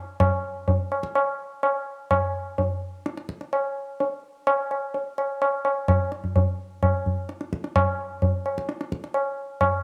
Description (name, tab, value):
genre	indian classical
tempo	128 BPM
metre	4/4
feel	straight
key	none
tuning	none
part	tabla	percussion	0.2-9.8 s	none	-25 LUFS	equal	none
room	moderate spring reverb, RT60 1.5 s, studio reverb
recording	home recording on cassette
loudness	-26 LUFS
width	mono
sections	0.2-9.8 A section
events	speeding up 0.0-9.8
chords	none